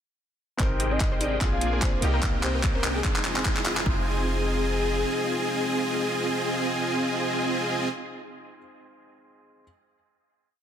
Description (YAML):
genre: future bass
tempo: 147 BPM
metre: 4/4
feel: swing 56% on 16ths, half-time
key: F dorian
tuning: A4 = 440 Hz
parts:
  - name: soft octave-layered synth lead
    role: melody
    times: 0.6-7.9 s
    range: Ab4 to F5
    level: -33 LUFS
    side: left 3 dB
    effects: chorus, tremolo, sidechain pumping, dub echo
  - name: clear baby grand piano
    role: accompaniment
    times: 0.6-9.6 s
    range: Ab3 to G5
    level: -36 LUFS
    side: equal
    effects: sidechain pumping, dub echo
  - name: wide unison pluck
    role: arpeggios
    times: 0.6-4.0 s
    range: D4 to C5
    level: -38 LUFS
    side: left 3 dB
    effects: none
  - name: dense compressed supersaw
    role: riff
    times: 0.6-7.9 s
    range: Bb3 to Ab5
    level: -28 LUFS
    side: right 1 dB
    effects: sidechain pumping, low-pass filter
  - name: warm 808-style bass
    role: bass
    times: 0.6-5.0 s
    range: F1 to C2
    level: -29 LUFS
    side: equal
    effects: tube saturation, sidechain pumping
  - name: electronic kick drum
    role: drums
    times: 0.6-4.0 s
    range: none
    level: -27 LUFS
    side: equal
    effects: none
  - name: pop drum kit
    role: drums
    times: 0.6-3.8 s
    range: handclaps, hi-hat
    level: -30 LUFS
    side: equal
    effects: none
  - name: riser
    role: sound effects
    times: 2.6-3.9 s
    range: none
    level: -37 LUFS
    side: right 1 dB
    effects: none
room: light reverb, digital ambience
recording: dense, heavily limited modern master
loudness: -23 LUFS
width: side -9 dB against mid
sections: 0.6-3.9 build; 3.9-7.1 final chord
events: build-up 0.6-3.9; drum fill 0.6-3.9; riser 2.6-3.9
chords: 0.6 Abmaj7; 1.4 Bb7; 2.0 Cm7; 3.0 Fm7